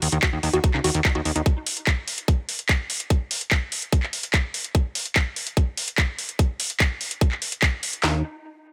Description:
psychedelic trance; 146 BPM; 4/4; straight; Eb minor; A4 = 440 Hz
plucky analog bass; bass; 0.0-1.4, 8.0-8.2 s; Db2 to Eb2; -26 LUFS; equal
drum and bass drum kit; drums; 0.0-8.0 s; handclaps, hi-hat; -27 LUFS; equal
woody wave-folded pluck; riff; 0.1-1.4, 8.0-8.2 s; Eb4 to Gb4; -31 LUFS; equal; chorus, vintage 12-bit sampler grit, sidechain pumping, dub echo
drum and bass drum kit; drums; 0.2-8.1 s; handclaps, kick drum, snare drum; -23 LUFS; equal
digital ambience; -24 LUFS; mono
0.0-8.0 A section

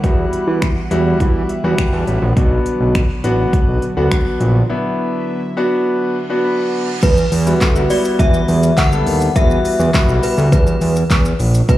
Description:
dance-pop; 103 BPM; 4/4; straight; A4 = 438 Hz
clear concert grand piano; accompaniment; 0.0-10.9 s; G3 to B5; -19 LUFS; left 1 dB; sidechain pumping
airy breathy pad; sustained chords; 0.0-7.0 s; D3 to F#5; -26 LUFS; right 1 dB; chorus, sidechain pumping
fat analog bass; bass; 0.0-11.8 s; A1 to E3; -15 LUFS; right 1 dB; sidechain pumping
deep house drum kit; drums; 0.0-11.8 s; crash cymbal, finger snaps, handclaps, hi-hat, kick drum, shaker; -16 LUFS; equal
reverse cymbal; sound effects; 6.1-7.0 s; -31 LUFS; right 5 dB; slapback echo
synth chime; melody; 7.0-11.8 s; B4 to F#5; -20 LUFS; left 1 dB; ensemble chorus, tape echo, slapback echo
tambourine; percussion; 7.6-11.2 s; -39 LUFS; right 5 dB
light reverb; live gig heard through the venue's PA, club reverb; -13 LUFS; side -14 dB against mid
0.0-7.0 A section; 7.0-11.8 B section
grand piano fill 1.2-2.4, 6.2-7.0; break 4.7-7.0; reverse cymbal 6.1-7.0
0.0 Emadd9; 2.4 Bm; 7.0 Emadd9

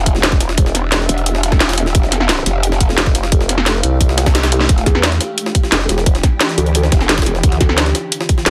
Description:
dark technical drum and bass; 175 BPM; 4/4; straight; E phrygian; A4 = 438 Hz
swarming drone; sustained chords; 0.1-8.5 s; D3 to F5; -27 LUFS; equal; built-in reverb, sidechain pumping
growl bass; bass; 0.0-4.8, 6.9-7.6 s; E1 to D2; -20 LUFS; equal; chorus, sidechain pumping
drum and bass drum kit; drums; 0.1-8.5 s; hi-hat, snare drum; -19 LUFS; equal
electronic kick drum; drums; 0.1-8.4 s; -16 LUFS; equal
jungle sampler-style drum kit; drums; 0.1-8.5 s; hi-hat, snare drum; -25 LUFS; equal; high-pass filter on hats, high-pass filter on snare
vowel-sweep wobble bass; bass; 0.2-8.5 s; E1 to E2; -19 LUFS; equal; chorus
digital ambience; dense, heavily limited modern master; -14 LUFS; mono
0.0-4.7 A section; 4.7-8.5 A section
drop 0.0-4.7, 4.7-8.5; drum fill 4.3-4.7
0.0 Em7; 1.9 Fadd9; 4.7 Em7; 7.4 Dm7

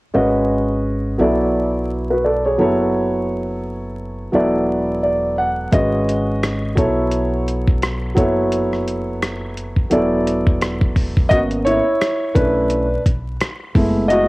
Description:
hip hop, jazz-hop; 86 BPM; 4/4; swing 59% on 16ths; G# phrygian; A4 = 438 Hz
dark concert grand piano; accompaniment; 0.1-14.3 s; F#3 to F#5; -17 LUFS; equal; cassette tape
upright bass; bass; 0.1-14.3 s; E1 to B1; -25 LUFS; equal
dusty soul sampler-style drum kit; drums; 5.7-14.3 s; hi-hat, kick drum, rim click; -18 LUFS; equal; cassette tape
light reverb, small room ambience; home recording on cassette, vinyl crackle; -16 LUFS; side -22 dB against mid
0.1-11.3 A section; 11.3-14.3 B section
grand piano fill 4.7-5.7; grand piano solo 11.3-14.3
0.1 G#m7; 1.2 Bm7; 2.6 F#m7; 4.3 E9sus4; 5.7 G#m7; 6.8 B9sus4; 8.2 F#m7; 9.9 E9sus4; 11.3 G#madd9; 12.4 Bm11; 13.8 F#m11

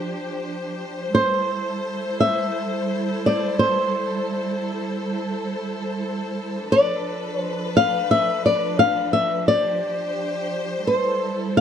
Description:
folk; 87 BPM; 4/4; straight; A4 = 443 Hz
warm symphonic string section; sustained chords; 0.0-11.6 s; F3 to C5; -26 LUFS; right 1 dB
flamenco guitar; melody; 1.1-11.6 s; C5 to G5; -20 LUFS; left 1 dB
light reverb; dark, warm production; -20 LUFS; side -8 dB against mid
0.0-11.6 A section
0.0 G7sus4; 1.1 C6; 6.7 Bm7b5; 9.5 G7sus4; 10.8 Am7

